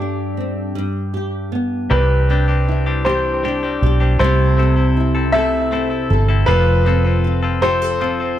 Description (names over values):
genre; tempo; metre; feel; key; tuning
six-eight pop ballad; 52 BPM (dotted quarters); 6/8; straight; C major; A4 = 438 Hz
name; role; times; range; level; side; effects
clear grand piano; melody; 0.0-8.4 s; G4 to E5; -21 LUFS; equal; tape echo
flamenco guitar; accompaniment; 0.0-8.4 s; G2 to A4; -21 LUFS; equal; double-tracked left and right
direct-recorded clean electric guitar; arpeggios; 1.9-8.4 s; C3 to A4; -23 LUFS; left 5 dB; none
vintage muted fingered electric bass; bass; 1.9-8.4 s; F1 to C2; -17 LUFS; equal; none
room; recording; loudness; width
light reverb; none; -14 LUFS; side -11 dB against mid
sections
0.0-1.9 A section; 1.9-8.4 B section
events
none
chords
0.0 Gsus4; 0.7 G; 1.9 Cadd9; 4.2 Am/C; 6.5 F